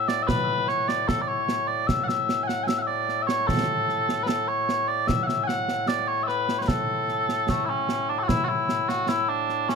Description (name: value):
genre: scottish traditional, Scottish pipe music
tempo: 75 BPM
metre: 2/4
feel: straight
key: A major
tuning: A4 = 439 Hz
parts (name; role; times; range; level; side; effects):
- mellow small bagpipes; melody; 0.0-9.8 s; A2 to G#5; -24 LUFS; left 1 dB; none
- concert snare drum and concert bass drum; drums; 0.1-9.8 s; none; -28 LUFS; right 3 dB; none
room: light reverb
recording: close, detailed microphones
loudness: -22 LUFS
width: side -5 dB against mid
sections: 0.0-8.3 A section; 8.3-9.8 A section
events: none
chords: none